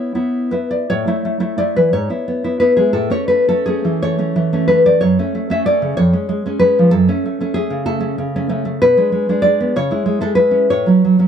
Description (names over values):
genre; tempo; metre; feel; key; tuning
romantic piece for solo classical guitar; 52-65 BPM (dotted quarters); 6/8; rubato; A major; A4 = 440 Hz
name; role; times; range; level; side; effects
nylon-string guitar; solo; 0.0-11.3 s; E#2 to E5; -13 LUFS; equal; none
room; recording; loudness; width
small room ambience; dry, close 1970s-style studio recording; -14 LUFS; side -8 dB against mid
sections
0.9-11.3 A section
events
none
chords
0.0 E; 0.9 A; 1.9 E/G#; 2.9 A; 5.0 F#m; 6.0 C#/E#; 6.9 F#m (rootless); 8.8 G#dim/B; 9.7 C#m; 10.7 F#m/A